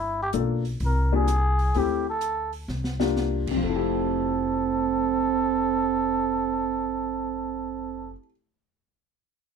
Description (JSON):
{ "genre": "jazz, small-group swing and bop", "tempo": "128 BPM", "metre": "4/4", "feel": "swing 67% on 8ths", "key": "F major", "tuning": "A4 = 441 Hz", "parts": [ { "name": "trumpet with cup mute", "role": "melody", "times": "0.0-8.2 s", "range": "E4 to Bb4", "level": "-28 LUFS", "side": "right 1 dB", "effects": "none" }, { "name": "upright bass", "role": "bass", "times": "0.0-8.1 s", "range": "F1 to D2", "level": "-29 LUFS", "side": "left 1 dB", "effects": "none" }, { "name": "warm baby grand piano", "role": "accompaniment", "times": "0.3-8.3 s", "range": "F2 to A4", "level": "-28 LUFS", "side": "left 8 dB", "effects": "none" }, { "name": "open jazz drum kit", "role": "drums", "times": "0.3-3.5 s", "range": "crash cymbal, hi-hat, kick drum, rim click, snare drum", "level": "-34 LUFS", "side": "right 1 dB", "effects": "none" }, { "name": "mellow trombone", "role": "second line", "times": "3.6-8.1 s", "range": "C4", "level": "-26 LUFS", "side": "right 12 dB", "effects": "none" } ], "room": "moderate studio reverb, RT60 0.5 s", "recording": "none", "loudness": "-23 LUFS", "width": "side -6 dB against mid", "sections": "0.0-3.6 A section; 3.6-7.4 B section", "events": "drum fill 2.7-3.2", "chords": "0.0 Gm7; 0.8 C9sus4; 1.7 D7sus4; 2.7 C9sus4; 3.6 Fmaj7" }